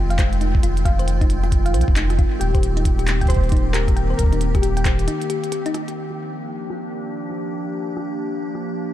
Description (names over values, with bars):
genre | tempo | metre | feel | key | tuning
IDM | 135 BPM | 4/4 | swing 62% on 16ths | unclear | A4 = 437 Hz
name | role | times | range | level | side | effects
icy glass pad | sustained chords | 0.0-8.9 s | Eb3 to G4 | -26 LUFS | equal | chorus, built-in reverb, vintage 12-bit sampler grit
warm sub bass | bass | 0.0-5.1 s | Eb1 to C2 | -20 LUFS | equal | none
flickering grainy texture | texture | 0.0-6.0 s | G5 | -39 LUFS | right 1 dB | built-in reverb
thumb-piano-like synth pluck | arpeggios | 0.1-6.0 s | Eb4 to G5 | -29 LUFS | left 3 dB | chorus, digital delay
glitchy drum kit | drums | 0.1-8.6 s | cabasa, handclaps, hi-hat, rim click | -30 LUFS | equal | low-pass filter on hats, low-pass filter on snare, low-pass filter on perc, dub echo
electronic kick drum | drums | 0.2-5.0 s | none | -19 LUFS | equal | none
warbly lo-fi synth keys | melody | 2.4-5.7 s | G4 to C5 | -28 LUFS | left 4 dB | chorus, dub echo
room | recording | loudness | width
little or no reverb | dark, warm production | -18 LUFS | side -13 dB against mid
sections
0.0-6.0 A section; 6.0-8.9 B section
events
break 5.1-6.0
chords
0.0 Fm7; 2.4 Eb6; 6.0 Gm7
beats
0.19 | 0.63 1.08 1.52 1.97 | 2.41 2.85 3.30 3.74 | 4.19 4.63 5.08 5.52 | 5.97 6.41 6.86 7.30 | 7.74 8.19 8.63